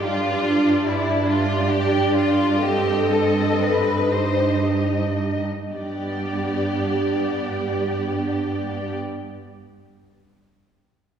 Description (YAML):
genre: classical, slow romantic movement for string orchestra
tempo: 34-50 BPM (dotted quarters)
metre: 6/8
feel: rubato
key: G major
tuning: A4 = 440 Hz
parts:
  - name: warm studio violin section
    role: melody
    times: 0.0-9.0 s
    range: D5 to Eb5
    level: -30 LUFS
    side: left 5 dB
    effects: none
  - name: rich studio violin section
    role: second line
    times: 0.0-9.0 s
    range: E4 to C5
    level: -25 LUFS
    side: equal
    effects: none
  - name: warm studio viola section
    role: accompaniment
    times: 0.0-9.0 s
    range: B3 to A4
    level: -25 LUFS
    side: right 1 dB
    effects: none
  - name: rich studio cello section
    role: bass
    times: 0.0-9.0 s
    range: G2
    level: -24 LUFS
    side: right 3 dB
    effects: none
room: wet concert hall reverb, RT60 2.0 s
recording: heard from further back in the room, small room ambience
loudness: -19 LUFS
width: side -8 dB against mid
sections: 0.0-5.7 A section; 5.7-8.8 B section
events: slowing down 0.0-5.7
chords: 0.0 G5; 2.6 Cm/G; 5.7 G